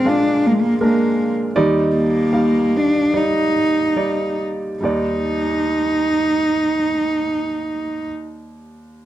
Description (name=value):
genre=acoustic folk-pop ballad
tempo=68-82 BPM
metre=4/4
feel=straight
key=Eb major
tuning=A4 = 440 Hz
part: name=warm cello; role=melody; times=0.0-8.0 s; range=Ab3 to Eb4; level=-18 LUFS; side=equal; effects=slapback echo
part: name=bright upright piano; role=accompaniment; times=0.0-9.1 s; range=Bb1 to F5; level=-21 LUFS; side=right 1 dB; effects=none
room=light reverb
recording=dry, close 1970s-style studio recording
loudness=-16 LUFS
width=side -13 dB against mid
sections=0.0-4.8 A section; 4.8-8.3 B section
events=slowing down 0.0-4.8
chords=0.0 Bb7; 1.5 Ebmaj7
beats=0.04 0.79 | 1.54 2.32 3.12 3.96 | 4.82 5.70 6.57 7.45